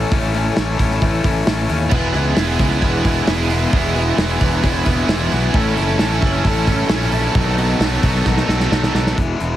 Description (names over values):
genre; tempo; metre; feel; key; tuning
indie rock; 132 BPM; 4/4; straight; E major; A4 = 440 Hz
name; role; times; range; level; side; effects
combo organ; sustained chords; 0.0-9.2 s; A4 to D#6; -32 LUFS; right 2 dB; none
overdriven electric guitar; riff; 0.0-9.6 s; A2 to A4; -20 LUFS; left 4 dB; none
fuzz fingered electric bass; bass; 0.0-9.6 s; E1 to D#2; -20 LUFS; right 1 dB; overdrive
loose indie drum kit; drums; 0.1-9.5 s; crash cymbal, hi-hat, kick drum, snare drum; -20 LUFS; right 1 dB; none
cranked stack guitar; riff; 1.9-9.2 s; F#3 to A4; -22 LUFS; right 8 dB; overdrive, ensemble chorus
room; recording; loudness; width
light reverb; heavily compressed radio sound, multiband compression; -14 LUFS; side -12 dB against mid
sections
0.0-9.2 A section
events
drum fill 8.3-9.2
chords
0.0 Amaj7; 1.9 Emaj7; 5.5 Amaj7; 7.4 B7sus4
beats
| 0.11 0.56 1.01 1.47 | 1.92 2.37 2.82 3.28 | 3.73 4.18 4.64 5.09 | 5.54 6.00 6.45 6.90 | 7.36 7.81 8.27 8.72 | 9.18